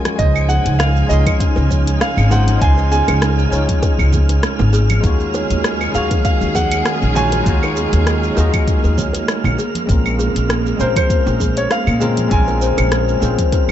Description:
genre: sunset chillout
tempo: 99 BPM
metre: 4/4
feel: swing 54% on 16ths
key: Bb minor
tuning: A4 = 440 Hz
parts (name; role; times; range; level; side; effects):
- bell-like tine electric piano; accompaniment; 0.0-13.7 s; F3 to C6; -23 LUFS; moving between left 5 dB and right 5 dB; auto-pan, digital delay
- warm studio string section; sustained chords; 0.0-13.7 s; Db3 to Ab5; -25 LUFS; right 1 dB; none
- deep house drum kit; drums; 0.1-13.7 s; claves, hi-hat, rim click, shaker; -23 LUFS; equal; none
- congas and bongos; percussion; 0.1-13.7 s; none; -27 LUFS; right 2 dB; none
- bright concert grand piano; melody; 0.2-13.7 s; C5 to Ab5; -22 LUFS; right 3 dB; digital delay
- upright bass; bass; 0.2-13.7 s; Ab1 to Bb2; -16 LUFS; equal; none
- electronic kick drum; drums; 0.2-13.7 s; none; -17 LUFS; equal; none
- wind-like tuned noise texture; texture; 0.7-13.7 s; F6; -29 LUFS; right 5 dB; built-in reverb
- kalimba; arpeggios; 0.5-13.5 s; Ab4 to Db5; -25 LUFS; left 4 dB; digital delay
room: light reverb, studio ambience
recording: dark, warm production, nothing above 7.8 kHz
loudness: -13 LUFS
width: side -11 dB against mid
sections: 0.0-13.7 A section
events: drum fill 0.0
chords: 0.2 Dbmaj9; 5.0 Ebm11; 9.6 Bbm9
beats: | 0.19 0.80 1.40 2.01 | 2.62 3.22 3.83 4.43 | 5.04 5.64 6.25 6.86 | 7.46 8.07 8.68 9.28 | 9.89 10.49 11.10 11.71 | 12.31 12.92 13.52

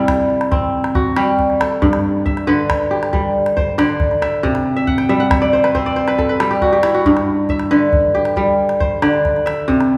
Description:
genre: west african traditional, West African string and xylophone music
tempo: 92 BPM (dotted quarters)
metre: 12/8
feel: straight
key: G major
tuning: A4 = 443 Hz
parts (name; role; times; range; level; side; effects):
- kora; arpeggios; 0.0-10.0 s; G2 to G5; -17 LUFS; equal; none
- calabash; percussion; 0.1-9.9 s; none; -24 LUFS; equal; none
room: wet concert hall reverb, RT60 2.1 s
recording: recorded in a church or concert hall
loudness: -16 LUFS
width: mono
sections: 0.0-10.0 A section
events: kora fill 4.8-7.1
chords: 0.0 C; 1.8 G; 4.4 C; 7.1 G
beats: 0.51 1.17 | 1.82 2.48 3.13 3.79 | 4.44 5.09 5.75 6.40 | 7.06 7.71 8.37 9.03 | 9.68

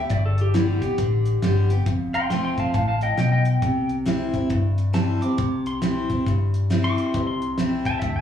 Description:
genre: honky-tonk and classic country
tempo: 136 BPM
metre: 4/4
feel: swing 62% on 8ths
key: C major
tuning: A4 = 440 Hz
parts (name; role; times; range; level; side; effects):
- pedal steel guitar; melody; 0.0-8.2 s; E4 to D6; -26 LUFS; left 1 dB; slapback echo
- picked steel-string acoustic guitar; accompaniment; 0.0-8.2 s; F2 to G4; -25 LUFS; left 2 dB; slapback echo
- vintage muted fingered electric bass; bass; 0.1-8.2 s; F1 to G2; -23 LUFS; equal; none
- cloth-damped thuddy drum kit; drums; 0.1-8.1 s; hi-hat, kick drum, snare drum; -28 LUFS; right 2 dB; none
- clear upright piano; accompaniment; 7.1-8.2 s; E4 to C5; -37 LUFS; right 6 dB; slapback echo
room: light reverb, small room ambience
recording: live gig heard through the venue's PA, club reverb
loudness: -20 LUFS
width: side -9 dB against mid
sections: 0.0-8.2 A section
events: pedal steel guitar solo 0.0-8.2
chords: 0.0 G; 1.9 F; 3.6 C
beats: | 0.11 0.55 0.99 1.43 | 1.87 2.31 2.75 3.19 | 3.63 4.07 4.51 4.95 | 5.39 5.83 6.27 6.71 | 7.15 7.58 8.02

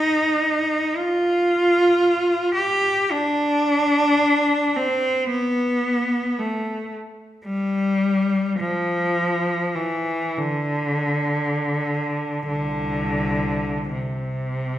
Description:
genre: classical, free, expressive piece for unaccompanied cello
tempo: free time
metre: none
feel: none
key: unclear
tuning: A4 = 440 Hz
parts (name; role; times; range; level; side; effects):
- clear cello; solo; 0.0-14.8 s; C2 to G4; -19 LUFS; equal; none
room: wet recital hall reverb, RT60 1.4 s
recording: recorded in a church or concert hall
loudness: -19 LUFS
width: side -12 dB against mid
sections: 0.0-14.8 A section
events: none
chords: none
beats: free time

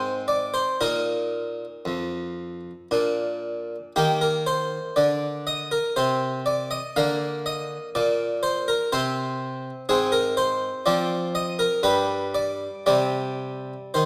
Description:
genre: classical, baroque-style suite movement for harpsichord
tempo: 56-63 BPM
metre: 3/4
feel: rubato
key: C minor from 9.9 s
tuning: A4 = 439 Hz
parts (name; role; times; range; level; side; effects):
- harpsichord; solo; 0.0-14.1 s; F2 to F5; -25 LUFS; equal; none
room: wet recital hall reverb, RT60 1.5 s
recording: none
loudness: -25 LUFS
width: mono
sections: 0.0-14.1 A section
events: none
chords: 0.0 Ab; 0.8 Bbsus4; 2.9 Bb; 4.0 Eb5; 7.0 Bb/D; 8.9 N.C.; 9.9 Ab; 10.9 Cm11/F; 11.8 N.C.; 12.9 Cm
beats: | 0.79 1.84 2.91 | 3.96 4.96 5.96 | 6.97 7.96 8.93 | 9.89 10.87 11.85 | 12.88 13.95

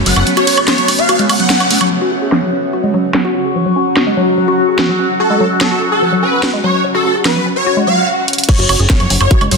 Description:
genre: psychedelic trance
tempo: 146 BPM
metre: 4/4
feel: straight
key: F# minor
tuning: A4 = 440 Hz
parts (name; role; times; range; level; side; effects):
- overtone-sweeping drone; sustained chords; 0.0-9.6 s; F#3 to F#4; -19 LUFS; left 2 dB; chorus, built-in reverb, phaser, sidechain pumping
- plucky analog bass; bass; 0.0-0.2, 8.6-9.6 s; F#1; -15 LUFS; equal; none
- granular cloud pad; texture; 0.0-8.1 s; C#4 to F#5; -20 LUFS; equal; built-in reverb, sidechain pumping
- swarming rave lead; melody; 0.1-1.8, 5.2-9.6 s; A4 to F#5; -16 LUFS; equal; chorus, phaser, sidechain pumping, dub echo
- woody wave-folded pluck; riff; 0.1-9.6 s; E#3 to G#4; -17 LUFS; moving between left 3 dB and right 4 dB; chorus, auto-pan, sidechain pumping, dub echo
- drum and bass drum kit; drums; 0.1-9.6 s; crash cymbal, hi-hat, ride cymbal, snare drum, woodblock; -16 LUFS; right 1 dB; low-pass filter on hats, low-pass filter on perc, low-pass filter on cymbals, low-pass filter on snare
- swell; sound effects; 7.8-8.5 s; none; -18 LUFS; left 1 dB; none
- electronic kick drum; drums; 8.5-9.4 s; none; -11 LUFS; equal; none
room: moderate lush hall reverb, RT60 2.0 s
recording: dense, heavily limited modern master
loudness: -11 LUFS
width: side -4 dB against mid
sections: 0.0-1.9 A section; 1.9-8.5 B section; 8.5-9.6 A section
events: drop 0.0-1.9, 8.5-9.6; band accent 1.5; filter sweep on drum 1.9-8.5; filter sweep on synth arpeggio sound 1.9-8.5; swell 7.8-8.5; stop 8.1-8.5; drum fill 8.3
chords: 0.0 F#5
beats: | 0.27 0.68 1.09 1.50 | 1.91 2.32 2.73 3.14 | 3.56 3.97 4.38 4.79 | 5.20 5.61 6.02 6.43 | 6.84 7.25 7.67 8.08 | 8.49 8.90 9.31

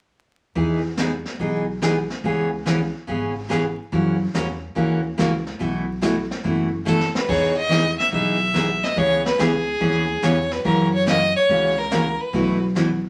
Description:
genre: country, western swing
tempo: 143 BPM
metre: 4/4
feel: swing 67% on 8ths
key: E major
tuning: A4 = 440 Hz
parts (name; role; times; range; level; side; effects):
- picked steel-string acoustic guitar; accompaniment; 0.6-12.9 s; B2 to G#4; -24 LUFS; equal; none
- upright bass; bass; 0.6-13.0 s; F#1 to F#2; -30 LUFS; equal; none
- vintage brush drum kit; drums; 0.6-13.1 s; brushed snare drum, crash cymbal, hi-hat, kick drum, snare drum; -32 LUFS; equal; none
- clear fiddle; melody; 6.9-12.6 s; G#4 to E5; -23 LUFS; equal; none
room: wet studio reverb, RT60 0.7 s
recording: vinyl crackle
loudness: -21 LUFS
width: mono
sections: 0.6-7.3 A section; 7.3-13.1 B section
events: drum fill 6.9-7.3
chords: 0.6 Emaj7; 2.2 C#m7; 3.9 F#7; 5.6 B7sus4; 7.3 Emaj7; 9.0 C#m9; 10.6 F#7; 12.3 B7sus4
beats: | 0.56 0.98 1.40 1.82 | 2.24 2.66 3.08 3.50 | 3.92 4.34 4.76 5.18 | 5.60 6.03 6.45 6.87 | 7.29 7.71 8.13 8.55 | 8.97 9.39 9.81 10.23 | 10.65 11.07 11.49 11.91 | 12.33 12.75

